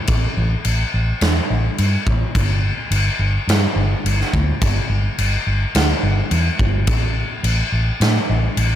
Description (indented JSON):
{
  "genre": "rock, shoegaze and dream pop",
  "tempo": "106 BPM",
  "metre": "4/4",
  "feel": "straight",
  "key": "unclear",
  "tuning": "A4 = 441 Hz",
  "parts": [
    { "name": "vintage muted fingered electric bass", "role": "bass", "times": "0.1-8.7 s", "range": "G1 to A2", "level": "-18 LUFS", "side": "equal", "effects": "none" },
    { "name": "huge arena drum kit", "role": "drums", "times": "0.1-8.7 s", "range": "crash cymbal, kick drum, snare drum", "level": "-20 LUFS", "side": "equal", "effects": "none" }
  ],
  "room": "light reverb",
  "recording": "none",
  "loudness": "-16 LUFS",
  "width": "side -11 dB against mid",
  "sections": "0.0-8.8 A section",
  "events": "none",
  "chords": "none",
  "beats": "| 0.09 0.66 1.22 1.79 | 2.35 2.92 3.49 4.05 | 4.62 5.18 5.75 6.32 | 6.88 7.45 8.01 8.58"
}